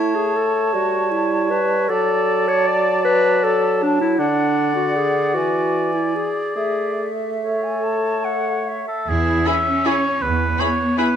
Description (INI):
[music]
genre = classical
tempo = 135-170 BPM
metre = 3/4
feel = rubato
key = A major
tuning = A4 = 440 Hz
[part]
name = clear clarinet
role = second line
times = 0.0-8.6 s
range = D4 to D5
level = -20 LUFS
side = left 2 dB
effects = none
[part]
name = silver concert flute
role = second line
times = 0.0-9.1 s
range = E5 to A5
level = -25 LUFS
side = equal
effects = none
[part]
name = warm oboe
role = second line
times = 0.0-11.2 s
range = G#4 to E5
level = -23 LUFS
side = right 1 dB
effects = none
[part]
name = mellow bassoon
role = accompaniment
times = 0.0-8.8 s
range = D3 to A3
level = -23 LUFS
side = right 3 dB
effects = none
[part]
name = rich studio cello section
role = bass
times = 9.1-11.2 s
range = B3 to E4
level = -22 LUFS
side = equal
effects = none
[part]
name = rich symphonic double bass section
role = bass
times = 9.1-10.5 s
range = E2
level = -24 LUFS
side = right 4 dB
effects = none
[part]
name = warm symphonic violin section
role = melody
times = 9.5-11.1 s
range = B5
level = -29 LUFS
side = left 4 dB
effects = none
[part]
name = warm symphonic violin section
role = second line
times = 9.5-11.1 s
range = G#4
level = -28 LUFS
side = left 5 dB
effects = none
[part]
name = rich symphonic viola section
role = accompaniment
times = 9.5-11.1 s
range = E4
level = -27 LUFS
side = right 1 dB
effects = none
[sound]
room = moderate scoring stage reverb, RT60 1.7 s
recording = none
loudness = -17 LUFS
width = side -8 dB against mid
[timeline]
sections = 0.0-9.1 A section; 9.1-11.2 B section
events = none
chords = 0.0 A; 0.7 A7/G; 1.9 D/F#; 4.2 D; 5.3 E9; 6.6 A; 9.1 E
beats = 0.37 | 0.75 1.13 1.52 | 1.90 2.29 2.69 | 3.06 3.44 3.83 | 4.19 4.57 4.97 | 5.35 5.74 6.16 | 6.57 6.99 7.42 | 7.83 8.24 8.67 | 9.07 9.46 9.85 | 10.21 10.59 10.98